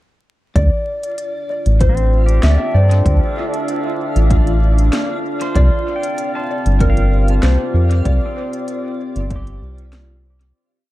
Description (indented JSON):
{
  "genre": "ambient dub",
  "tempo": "96 BPM",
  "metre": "4/4",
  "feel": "swing 53% on 16ths",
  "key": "D minor",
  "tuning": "A4 = 435 Hz",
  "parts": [
    { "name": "electric slide guitar", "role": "melody", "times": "0.6-9.9 s", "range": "Bb4 to E5", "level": "-24 LUFS", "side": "left 1 dB", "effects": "dub echo" },
    { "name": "deep dark ambient pad", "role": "sustained chords", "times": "1.4-10.6 s", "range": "C4 to F5", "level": "-24 LUFS", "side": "equal", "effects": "chorus, built-in reverb" },
    { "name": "round analog bass", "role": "bass", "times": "0.6-10.5 s", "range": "G1 to G2", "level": "-13 LUFS", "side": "equal", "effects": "tube saturation" },
    { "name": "electronic kick drum", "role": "drums", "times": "0.6-9.4 s", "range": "none", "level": "-18 LUFS", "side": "equal", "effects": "overdrive" },
    { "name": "organic electronic drum kit", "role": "drums", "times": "0.6-10.5 s", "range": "hi-hat, snare drum", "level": "-26 LUFS", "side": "left 1 dB", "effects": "overdrive, dub echo" },
    { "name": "backwards swelling texture", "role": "texture", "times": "1.1-10.6 s", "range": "F4", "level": "-29 LUFS", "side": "right 1 dB", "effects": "built-in reverb" },
    { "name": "pedal steel guitar", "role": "arpeggios", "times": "1.9-10.9 s", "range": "C4 to A5", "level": "-29 LUFS", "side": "right 1 dB", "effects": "low-pass filter, dub echo" }
  ],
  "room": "light reverb, digital ambience",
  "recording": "dark, warm production, vinyl crackle",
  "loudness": "-14 LUFS",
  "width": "side -16 dB against mid",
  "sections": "0.6-10.6 groove",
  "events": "filter sweep on pedal steel guitar 0.6-10.6; fade-out 7.2-10.6",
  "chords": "0.6 Dm9; 5.6 Csus4",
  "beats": "| 0.56 1.18 1.80 2.43 | 3.06 3.68 4.30 4.93 | 5.55 6.18 6.80 7.43 | 8.05 8.68 9.30 9.93"
}